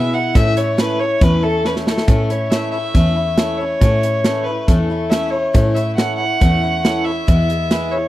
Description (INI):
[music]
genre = honky-tonk and classic country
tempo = 139 BPM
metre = 4/4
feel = straight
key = A major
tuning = A4 = 439 Hz
[part]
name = dark fiddle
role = melody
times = 0.0-8.1 s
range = A4 to F#5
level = -20 LUFS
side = equal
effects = none
[part]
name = picked swing-style acoustic guitar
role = accompaniment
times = 0.0-8.1 s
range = E2 to E4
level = -23 LUFS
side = left 4 dB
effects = none
[part]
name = tonewheel organ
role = accompaniment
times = 0.0-8.0 s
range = E4 to C#5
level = -26 LUFS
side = right 4 dB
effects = stopped rotary speaker
[part]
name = rich cello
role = bass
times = 0.0-8.0 s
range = E2 to B2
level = -20 LUFS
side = equal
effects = none
[part]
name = natural country drum kit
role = drums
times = 0.4-7.8 s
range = hi-hat, kick drum, snare drum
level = -15 LUFS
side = equal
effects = none
[sound]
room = small room ambience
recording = dry, close 1970s-style studio recording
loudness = -14 LUFS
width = side -15 dB against mid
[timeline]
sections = 0.0-2.1 A section; 2.1-8.1 B section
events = fiddle solo 0.0-2.1; drum fill 1.7-2.1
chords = 0.4 A; 7.3 E